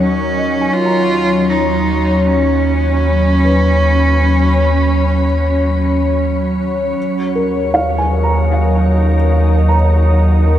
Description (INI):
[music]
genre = ambient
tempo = 77 BPM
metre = 4/4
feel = straight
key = Eb minor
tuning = A4 = 440 Hz
[part]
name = rich cello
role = melody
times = 0.0-6.2 s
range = C#4 to F4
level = -19 LUFS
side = right 2 dB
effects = shimmer reverb, diffuse ambient delay
[part]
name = glassy FM pad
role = sustained chords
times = 0.0-10.6 s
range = F#3 to B5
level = -16 LUFS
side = equal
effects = ensemble chorus, built-in reverb, shimmer reverb
[part]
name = felt-muted upright piano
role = arpeggios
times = 0.0-10.6 s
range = Bb4 to Bb5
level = -21 LUFS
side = right 1 dB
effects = shimmer reverb, diffuse ambient delay
[part]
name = warm sub bass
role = bass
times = 0.0-10.6 s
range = Eb2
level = -15 LUFS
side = equal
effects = none
[part]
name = analog drone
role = drone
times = 0.0-7.0 s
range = Eb3 to Db4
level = -26 LUFS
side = right 1 dB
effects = none
[sound]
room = wet cathedral reverb, RT60 5.1 s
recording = none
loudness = -12 LUFS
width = side -11 dB against mid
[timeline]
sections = 0.0-7.0 A section; 7.0-10.6 B section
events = fade-in on sub bass 0.0-7.0; fade-in on cello 0.0-7.0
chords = 0.0 Ebm7; 0.7 Bsus2/Eb; 7.0 Ebm7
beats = | 0.75 1.51 2.28 3.06 | 3.83 4.61 5.39 6.18 | 6.97 7.75 8.53 9.30 | 10.07